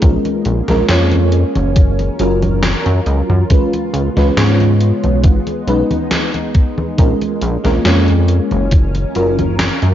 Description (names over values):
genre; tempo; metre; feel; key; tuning
vaporwave; 69 BPM; 4/4; swing 53% on 16ths; unclear; A4 = 441 Hz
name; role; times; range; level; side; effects
FM electric piano with soft pad layer; accompaniment; 0.0-9.4 s; F#3 to C#5; -18 LUFS; equal; tremolo, ensemble chorus, tape echo
soft string machine; sustained chords; 0.0-9.9 s; C#3 to A#4; -21 LUFS; equal; phaser, ensemble chorus
chorused synth bass; bass; 0.0-9.9 s; F#1 to G#2; -14 LUFS; equal; none
electronic kick drum; drums; 0.0-8.9 s; none; -10 LUFS; equal; none
gated 80s digital drum machine; drums; 0.0-9.9 s; congas, hi-hat, snare drum; -20 LUFS; left 1 dB; gated reverb, gated reverb snare
room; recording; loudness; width
light reverb, digital ambience; cassette tape, nothing above 7.5 kHz; -12 LUFS; side -11 dB against mid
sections
0.0-9.9 A section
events
none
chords
0.0 A#m7; 1.8 F#maj7; 3.5 C#7; 5.2 B69; 7.0 A#m7; 8.7 F#maj7